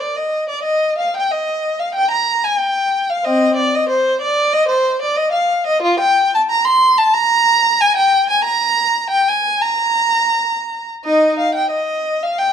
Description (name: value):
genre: classical, baroque-style suite movement for unaccompanied violin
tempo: 92 BPM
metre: 4/4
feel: rubato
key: Eb major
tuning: A4 = 439 Hz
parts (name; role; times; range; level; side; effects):
- warm violin; solo; 0.0-12.5 s; C4 to C6; -14 LUFS; equal; none
room: light reverb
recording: dark, warm production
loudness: -14 LUFS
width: side -8 dB against mid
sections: 0.0-12.5 A section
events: none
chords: none